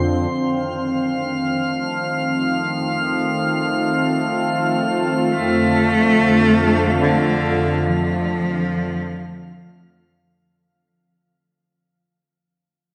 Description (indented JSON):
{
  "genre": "ambient",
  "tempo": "free time",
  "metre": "none",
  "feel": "none",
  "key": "F mixolydian",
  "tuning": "A4 = 442 Hz",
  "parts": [
    { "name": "warm analog pad", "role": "sustained chords", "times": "0.0-10.4 s", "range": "F2 to A4", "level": "-24 LUFS", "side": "equal", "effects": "subtle chorus, shimmer reverb" },
    { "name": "overtone-sweeping drone", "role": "drone", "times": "0.0-10.5 s", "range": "F3 to C4", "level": "-29 LUFS", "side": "equal", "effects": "chorus, built-in reverb, phaser" },
    { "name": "drifting glass-harmonics texture", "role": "texture", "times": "0.0-10.4 s", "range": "C5 to F6", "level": "-27 LUFS", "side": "equal", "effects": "chorus, built-in reverb, shimmer reverb" },
    { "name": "rich cello", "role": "melody", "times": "5.3-10.0 s", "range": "D3 to A3", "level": "-20 LUFS", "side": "equal", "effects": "tape echo" }
  ],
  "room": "wet huge ambient reverb, RT60 8.9 s",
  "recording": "dark, warm production",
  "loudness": "-19 LUFS",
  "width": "mono",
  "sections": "0.3-10.4 A section",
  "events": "fade-in on analog synth pad 0.3-10.4; fade-out on synth drone 0.3-10.4; fade-out 7.0-10.4",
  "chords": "0.3 F7; 5.3 Dm7/F"
}